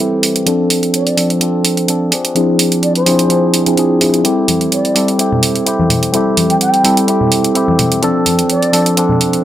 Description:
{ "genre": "filtered disco house", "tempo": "127 BPM", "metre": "4/4", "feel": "swing 54% on 16ths", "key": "A minor", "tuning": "A4 = 440 Hz", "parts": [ { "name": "bell-like tine electric piano", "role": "accompaniment", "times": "0.0-9.4 s", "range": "F3 to A4", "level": "-14 LUFS", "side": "equal", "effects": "phaser, low-pass filter" }, { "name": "direct-recorded clean electric guitar", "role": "riff", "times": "0.0-9.4 s", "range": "E3 to A4", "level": "-20 LUFS", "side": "left 2 dB", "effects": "low-pass filter" }, { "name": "downlifter", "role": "sound effects", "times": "0.1-0.5 s", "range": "none", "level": "-42 LUFS", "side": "right 1 dB", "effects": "none" }, { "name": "electronic hi-hat", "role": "drums", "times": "0.2-9.4 s", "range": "none", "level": "-16 LUFS", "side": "right 3 dB", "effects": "none" }, { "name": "mellow concert flute", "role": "melody", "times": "0.9-8.9 s", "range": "C5 to G5", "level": "-17 LUFS", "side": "equal", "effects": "low-pass filter, dub echo" }, { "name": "tambourine and congas", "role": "percussion", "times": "4.2-9.4 s", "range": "none", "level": "-18 LUFS", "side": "left 2 dB", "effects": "low-pass filter on perc" } ], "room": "light reverb, digital ambience", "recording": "none", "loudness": "-11 LUFS", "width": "side -12 dB against mid", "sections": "0.0-9.4 A section", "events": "filter sweep 0.0-9.4", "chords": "0.5 Dm7; 2.1 E7b9b13; 4.2 Am7; 8.0 Dm7" }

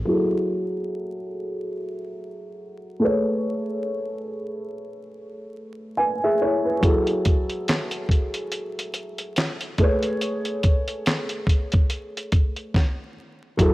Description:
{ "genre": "lo-fi hip hop", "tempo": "71 BPM", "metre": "4/4", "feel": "swing 59% on 16ths", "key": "unclear", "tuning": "A4 = 441 Hz", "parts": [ { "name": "felt-muted upright piano", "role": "accompaniment", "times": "0.0-13.7 s", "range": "F#3 to G#5", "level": "-24 LUFS", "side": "equal", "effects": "low-pass filter" }, { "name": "dusty soul sampler-style drum kit", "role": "drums", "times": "6.8-13.7 s", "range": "handclaps, hi-hat, kick drum, snare drum", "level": "-21 LUFS", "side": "equal", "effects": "cassette tape" }, { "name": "deep dub fingered electric bass", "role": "bass", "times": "13.6-13.7 s", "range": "F#1", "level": "-28 LUFS", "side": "equal", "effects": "none" } ], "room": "little or no reverb", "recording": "home recording on cassette, vinyl crackle", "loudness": "-22 LUFS", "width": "side -18 dB against mid", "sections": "0.1-13.6 A section", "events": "filter sweep on felt piano 0.1-13.6", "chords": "0.1 F#m9; 3.0 Amaj9; 6.8 F#m9; 9.8 Amaj9" }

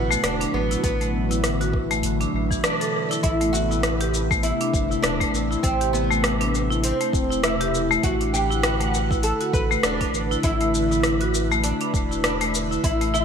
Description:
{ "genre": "organic downtempo", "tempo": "100 BPM", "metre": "4/4", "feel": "swing 57% on 16ths", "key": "unclear", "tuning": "A4 = 438 Hz", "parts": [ { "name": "oud", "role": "melody", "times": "0.0-13.2 s", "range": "B3 to B4", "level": "-26 LUFS", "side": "equal", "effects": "digital delay" }, { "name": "airy breathy pad", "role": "sustained chords", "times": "0.0-13.2 s", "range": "B2 to F#5", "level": "-29 LUFS", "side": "equal", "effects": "chorus, phaser, sidechain pumping" }, { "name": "warm sub bass", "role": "bass", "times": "0.0-13.2 s", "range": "E1 to A1", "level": "-27 LUFS", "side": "equal", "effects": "sidechain pumping" }, { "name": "quartz singing bowl", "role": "texture", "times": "0.0-3.2 s", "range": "none", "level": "barely audible", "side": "none", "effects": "none" }, { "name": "marimba with hard mallets", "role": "arpeggios", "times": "0.1-13.2 s", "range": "E3 to A4", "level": "-26 LUFS", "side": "left 1 dB", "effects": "digital delay" }, { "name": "afro-pop drum kit", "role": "drums", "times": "0.1-13.2 s", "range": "hi-hat, rim click, shaker", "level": "-26 LUFS", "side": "equal", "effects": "overdrive, gated reverb" }, { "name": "electronic kick drum", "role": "drums", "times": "0.8-13.0 s", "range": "none", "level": "-26 LUFS", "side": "equal", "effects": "overdrive" } ], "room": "light reverb", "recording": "bright 1980s-style digital production", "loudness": "-20 LUFS", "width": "side -7 dB against mid", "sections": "0.0-3.2 A section; 3.2-13.2 B section", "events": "band accent 2.6-2.9", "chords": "0.0 Bm; 3.2 Amadd9; 8.0 Bm" }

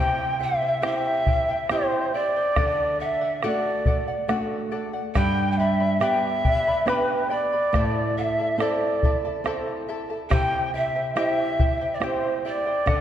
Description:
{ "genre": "andean folk, Andean ensemble", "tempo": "70 BPM", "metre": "3/4", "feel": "straight", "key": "unclear", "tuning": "A4 = 440 Hz", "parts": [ { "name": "large quena", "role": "melody", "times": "0.0-13.0 s", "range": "B4 to G5", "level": "-26 LUFS", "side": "left 1 dB", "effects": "none" }, { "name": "breathy mellow large pan pipes", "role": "second line", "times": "0.0-13.0 s", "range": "B4 to G5", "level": "-29 LUFS", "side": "right 4 dB", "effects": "none" }, { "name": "charango", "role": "accompaniment", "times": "0.0-13.0 s", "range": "E4 to B5", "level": "-29 LUFS", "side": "left 2 dB", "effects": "none" }, { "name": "flamenco guitar", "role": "accompaniment", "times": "0.0-13.0 s", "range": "G2 to A4", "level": "-29 LUFS", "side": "right 2 dB", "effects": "none" }, { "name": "bombo", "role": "percussion", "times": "0.8-13.0 s", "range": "none", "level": "-27 LUFS", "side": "left 1 dB", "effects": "none" } ], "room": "wet concert hall reverb, RT60 2.3 s", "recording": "dark, warm production", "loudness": "-21 LUFS", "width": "side -10 dB against mid", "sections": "0.0-13.0 A section", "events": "none", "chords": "0.0 C; 2.6 D; 5.2 G; 7.7 Am; 10.3 C" }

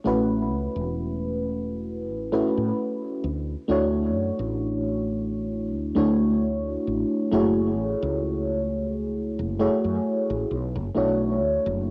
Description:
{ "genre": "vaporwave", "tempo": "66 BPM", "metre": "4/4", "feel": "swing 54% on 16ths", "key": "F# minor", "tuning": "A4 = 440 Hz", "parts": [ { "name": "mellow FM electric piano", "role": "accompaniment", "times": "0.0-11.9 s", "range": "A3 to C#5", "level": "-26 LUFS", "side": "equal", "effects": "phaser, subtle chorus, cassette tape, analog delay" }, { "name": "woody fretless electric bass", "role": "bass", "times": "0.1-11.9 s", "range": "E1 to A2", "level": "-33 LUFS", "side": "equal", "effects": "tube saturation, analog chorus" } ], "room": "moderate spring reverb, RT60 1.6 s", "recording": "home recording on cassette", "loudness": "-25 LUFS", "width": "mono", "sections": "0.0-7.3 A section; 7.3-11.9 B section", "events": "none", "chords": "0.0 A69; 3.2 Dmaj7; 7.3 F#m9; 10.5 Bm11" }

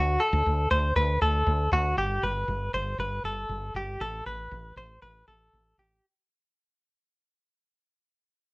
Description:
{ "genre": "jangly indie pop", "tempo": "118 BPM", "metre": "4/4", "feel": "straight", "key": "G major", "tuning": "A4 = 436 Hz", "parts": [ { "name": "direct-recorded clean electric guitar", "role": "arpeggios", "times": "0.0-6.0 s", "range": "F#4 to C5", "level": "-27 LUFS", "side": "equal", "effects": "tremolo, slapback echo" }, { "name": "woody fretless electric bass", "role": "bass", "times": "0.0-6.0 s", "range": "G1 to D2", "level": "-28 LUFS", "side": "equal", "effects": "none" } ], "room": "light reverb", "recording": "worn, warbling old tape, cassette tape, warbly pitch drift", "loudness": "-25 LUFS", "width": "side -25 dB against mid", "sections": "0.0-2.0 A section; 2.0-6.0 B section", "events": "fade-out 2.0-6.0", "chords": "0.0 D; 2.0 Gsus2; 4.0 N.C." }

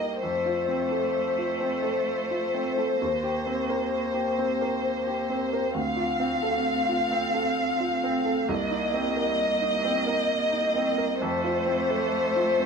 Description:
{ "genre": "neoclassical piano and strings", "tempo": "66 BPM", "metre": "3/4", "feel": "rubato", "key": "C dorian", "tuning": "A4 = 440 Hz", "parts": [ { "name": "rich chamber violin section", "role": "melody", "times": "0.0-12.7 s", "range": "C5 to F5", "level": "-26 LUFS", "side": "left 2 dB", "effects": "none" }, { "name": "clear cello", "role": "second line", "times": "0.0-12.7 s", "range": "A3 to C4", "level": "-33 LUFS", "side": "right 1 dB", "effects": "none" }, { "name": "clear baby grand piano", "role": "accompaniment", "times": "0.0-12.7 s", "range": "C2 to Bb4", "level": "-28 LUFS", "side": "right 2 dB", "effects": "none" } ], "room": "moderate stone room reverb, RT60 1.1 s", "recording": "band playing live in one room", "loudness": "-24 LUFS", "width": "side -5 dB against mid", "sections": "0.0-12.7 A section", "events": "none", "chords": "0.2 F; 3.0 Cm7/Eb; 5.8 Dm7; 8.5 Cm7; 11.2 F" }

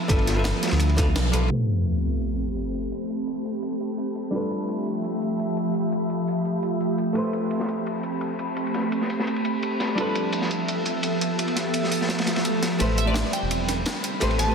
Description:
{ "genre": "liquid drum and bass", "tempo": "170 BPM", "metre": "4/4", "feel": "straight", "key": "A minor", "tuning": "A4 = 440 Hz", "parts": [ { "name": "archtop guitar, miked and amplified", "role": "accompaniment", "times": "0.0-14.5 s", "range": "G3 to F5", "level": "-29 LUFS", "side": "equal", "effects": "dub echo" }, { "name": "glassy FM pad", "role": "sustained chords", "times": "0.0-14.5 s", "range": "F3 to B5", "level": "-26 LUFS", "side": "right 1 dB", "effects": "ensemble chorus, built-in reverb" }, { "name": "smooth synth bass", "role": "bass", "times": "0.1-1.5, 12.8-14.5 s", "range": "E1 to D2", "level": "-24 LUFS", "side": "equal", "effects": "none" }, { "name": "crunchy breakbeat drum kit", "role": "drums", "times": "0.1-1.4, 7.2-14.5 s", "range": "ride cymbal, snare drum", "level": "-30 LUFS", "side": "equal", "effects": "high-pass filter on cymbals, high-pass filter on snare, high-pass filter on room" }, { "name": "electronic kick drum", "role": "drums", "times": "0.1-1.1 s", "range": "none", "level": "-23 LUFS", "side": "equal", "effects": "none" }, { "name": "jungle sampler-style drum kit", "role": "drums", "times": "0.1-14.5 s", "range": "hi-hat, snare drum", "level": "-33 LUFS", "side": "right 1 dB", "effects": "none" }, { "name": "sub drop, swell and riser", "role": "sound effects", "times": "1.5-2.9, 12.3-14.5 s", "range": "none", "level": "-28 LUFS", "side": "equal", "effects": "none" }, { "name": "glassy wavetable pluck", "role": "melody", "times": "13.0-14.5 s", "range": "D5 to A5", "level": "-29 LUFS", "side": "equal", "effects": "chorus, ping-pong delay" } ], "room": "wet concert hall reverb, RT60 2.1 s", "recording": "dense, heavily limited modern master, low-pass filter", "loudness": "-22 LUFS", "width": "side -6 dB against mid", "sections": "0.0-1.5 A section; 1.5-12.8 B section; 12.8-14.5 C section", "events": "band accent 1.2; impact 1.5-2.9; filter sweep 1.5-12.8; swell 12.3-12.8; build-up 12.8-14.5; filter sweep on ambient pad 12.8-14.5", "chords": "0.0 G13; 1.5 Am9; 4.3 G13; 7.2 Am9; 10.0 G13; 12.8 Am9" }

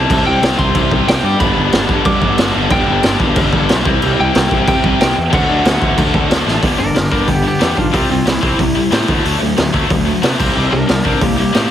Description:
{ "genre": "punk rock", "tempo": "184 BPM", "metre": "4/4", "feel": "straight", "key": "G major", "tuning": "A4 = 440 Hz", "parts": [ { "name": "lightly driven lead guitar", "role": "melody", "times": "0.0-11.7 s", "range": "Bb3 to D6", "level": "-19 LUFS", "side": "left 1 dB", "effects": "none" }, { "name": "tight distorted guitar", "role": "riff", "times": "0.0-11.7 s", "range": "G2 to E4", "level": "-18 LUFS", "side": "left 11 dB", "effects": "distortion" }, { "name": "tight distorted guitar", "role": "riff", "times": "0.0-11.7 s", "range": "G2 to D4", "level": "-20 LUFS", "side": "right 13 dB", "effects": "distortion" }, { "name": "fuzz picked electric bass", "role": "bass", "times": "0.0-11.6 s", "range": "G1 to C3", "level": "-19 LUFS", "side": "equal", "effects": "overdrive" }, { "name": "raw garage drum kit", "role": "drums", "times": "0.1-11.6 s", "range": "crash cymbal, hi-hat, kick drum, snare drum", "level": "-16 LUFS", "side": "equal", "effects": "none" } ], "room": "light reverb", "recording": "heavily compressed radio sound, multiband compression", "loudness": "-11 LUFS", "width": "side -10 dB against mid", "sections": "0.0-6.6 A section; 6.6-11.7 B section", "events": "drum fill 6.5; lead electric guitar solo 6.6-11.7", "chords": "0.0 C; 1.4 G; 3.9 C; 5.3 D; 6.6 G; 7.9 C; 9.1 D; 10.4 C5" }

